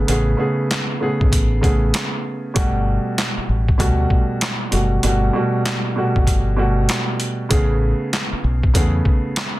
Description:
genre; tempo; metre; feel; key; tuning
hip hop, boom-bap hip-hop; 97 BPM; 4/4; swing 63% on 16ths; G major; A4 = 441 Hz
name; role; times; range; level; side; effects
dark grand piano; accompaniment; 0.0-9.6 s; B2 to G#4; -20 LUFS; right 1 dB; cassette tape, high-pass filter, low-pass filter
deep dub fingered electric bass; bass; 0.0-9.0 s; F#1 to E2; -19 LUFS; equal; none
boom bap sampler-style drum kit; drums; 0.1-9.6 s; handclaps, hi-hat, kick drum, snare drum; -19 LUFS; equal; none
room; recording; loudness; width
little or no reverb; dense, heavily limited modern master; -16 LUFS; side -17 dB against mid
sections
0.0-2.6 A section; 2.6-9.6 A section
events
none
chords
0.0 Amaj9; 2.6 Gmaj9; 7.5 Amaj9

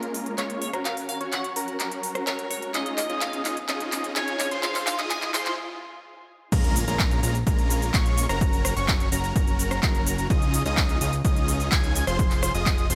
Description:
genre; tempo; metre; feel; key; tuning
EDM, festival progressive house; 127 BPM; 4/4; straight; Bb minor; A4 = 440 Hz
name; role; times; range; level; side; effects
unison lead; arpeggios; 0.0-12.9 s; Bb5 to Ab6; -34 LUFS; equal; sidechain pumping, tape echo
supersaw chords; riff; 0.0-12.9 s; Ab3 to Ab5; -33 LUFS; equal; sidechain pumping, low-pass filter, tape echo
big-room dance drum kit; drums; 0.0-12.9 s; crash cymbal, handclaps, hi-hat, rim click, shaker; -31 LUFS; equal; overdrive
riser and impact; sound effects; 1.7-8.4 s; none; -41 LUFS; equal; none
glassy wavetable pluck; melody; 0.4-5.2 s; Db5 to Ab5; -36 LUFS; equal; chorus, tape echo
fat analog bass; bass; 6.5-12.9 s; F1 to Db2; -30 LUFS; equal; sidechain pumping
electronic kick drum; drums; 6.5-12.8 s; none; -26 LUFS; equal; overdrive
room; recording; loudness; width
light reverb; high-pass filter; -25 LUFS; mono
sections
0.0-6.5 A section; 6.5-12.9 B section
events
build-up 0.0-6.5; drum fill 0.0-5.6; filter sweep on supersaw synth 0.0-6.5; filter sweep on analog synth lead 0.0-6.5; riser 1.7-5.6; break 5.6-6.5; drop 6.5-12.9; impact 6.5-8.4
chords
0.0 Bbm7; 0.9 Gb; 2.7 Dbadd9; 4.6 Fm; 6.5 Bbm7; 8.4 Gb; 10.3 Dbadd9; 12.2 Fm

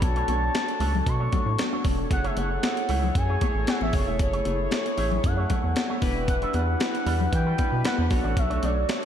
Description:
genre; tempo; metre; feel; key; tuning
early-eighties boogie funk; 115 BPM; 4/4; straight; F# minor; A4 = 439 Hz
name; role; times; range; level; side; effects
expressive synth lead; melody; 0.0-9.1 s; C#5 to C#6; -30 LUFS; equal; chorus, ping-pong delay
chorused polysynth; accompaniment; 0.0-9.1 s; D4 to C#5; -32 LUFS; left 2 dB; none
electric guitar with an envelope filter; riff; 0.0-9.1 s; G3 to E5; -35 LUFS; right 4 dB; analog chorus
rubbery square bass; bass; 0.0-8.8 s; E1 to E3; -26 LUFS; equal; none
breakbeat sampler-style drum kit; drums; 0.0-9.1 s; hi-hat, kick drum, snare drum; -27 LUFS; equal; none
congas; percussion; 0.0-9.0 s; none; -33 LUFS; left 5 dB; none
room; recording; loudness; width
moderate lush hall reverb, RT60 2.1 s; dreamy mix soaked in reverb; -22 LUFS; side -9 dB against mid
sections
0.0-9.1 A section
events
none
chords
0.0 Bm9; 2.1 F#m9; 6.0 Em9; 8.1 Bm9

